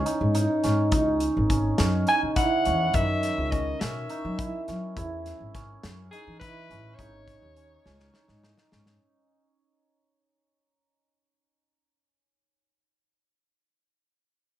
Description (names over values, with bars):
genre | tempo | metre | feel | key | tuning
progressive instrumental, band music in an uneven meter | 208 BPM (eighths) | 7/8 | straight | C# minor | A4 = 440 Hz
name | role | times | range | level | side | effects
warm soprano saxophone | melody | 0.0-8.7 s | G#4 to G#5 | -27 LUFS | equal | slapback echo
cimbalom | arpeggios | 0.0-12.6 s | D#3 to E4 | -27 LUFS | right 2 dB | none
loose indie drum kit | drums | 0.1-9.0 s | hi-hat, kick drum, snare drum | -30 LUFS | left 1 dB | none
upright bass | bass | 0.2-8.9 s | G#1 to F#3 | -29 LUFS | equal | none
room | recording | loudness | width
light reverb | none | -23 LUFS | side -12 dB against mid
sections
0.0-9.0 A section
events
fade-out 0.0-9.0; drum fill 7.8-9.0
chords
0.0 G#sus4; 0.9 C#m; 2.9 F#5; 5.0 C#m7; 7.0 G#sus4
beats
0.06 0.35 0.63 | 0.92 1.21 1.50 1.79 2.08 2.37 2.65 | 2.94 3.23 3.52 3.81 4.10 4.39 4.67 | 4.96 5.25 5.54 5.83 6.12 6.41 6.69 | 6.98 7.27 7.56 7.85 8.14 8.43 8.71